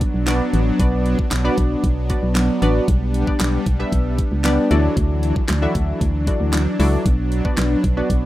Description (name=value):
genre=dance-pop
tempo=115 BPM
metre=4/4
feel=straight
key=B minor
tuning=A4 = 441 Hz
part: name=funky polysynth comp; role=accompaniment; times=0.0-8.3 s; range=B3 to E5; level=-23 LUFS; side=left 1 dB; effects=chorus, sidechain pumping
part: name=soft supersaw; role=sustained chords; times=0.0-8.3 s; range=E3 to D4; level=-23 LUFS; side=equal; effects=sidechain pumping
part: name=organ-like FM bass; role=bass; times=0.0-8.3 s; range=A1 to D2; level=-20 LUFS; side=equal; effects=sidechain pumping
part: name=pop drum kit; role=drums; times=0.0-8.2 s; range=handclaps, hi-hat, kick drum, snare drum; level=-21 LUFS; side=equal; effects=overdrive
part: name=impact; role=sound effects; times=0.0-0.8 s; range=none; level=barely audible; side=none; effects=none
room=digital ambience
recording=rough home demo mix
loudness=-16 LUFS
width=side -15 dB against mid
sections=0.0-8.3 A section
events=impact 0.0-0.8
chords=0.0 Bm; 2.9 G/B; 4.7 Dadd9; 7.1 Bm